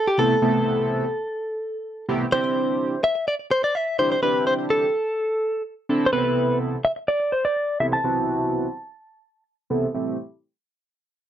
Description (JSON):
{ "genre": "pop", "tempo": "126 BPM", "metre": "4/4", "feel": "straight", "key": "A dorian", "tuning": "A4 = 439 Hz", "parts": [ { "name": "direct-recorded clean electric guitar", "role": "melody", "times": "0.0-9.4 s", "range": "G4 to A5", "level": "-22 LUFS", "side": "left 1 dB", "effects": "slapback echo" }, { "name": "chorused polysynth", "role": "accompaniment", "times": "0.2-10.2 s", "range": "C3 to A4", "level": "-23 LUFS", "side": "right 2 dB", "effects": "none" } ], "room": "light reverb", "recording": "dry, close 1970s-style studio recording, low-pass filter", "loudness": "-21 LUFS", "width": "side -10 dB against mid", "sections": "0.0-2.3 A section; 2.3-9.9 B section; 9.9-11.3 C section", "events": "filter sweep 2.3-9.9", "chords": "0.0 Amadd9/C; 2.3 Cadd9; 6.1 Amadd9/C; 9.9 Am7" }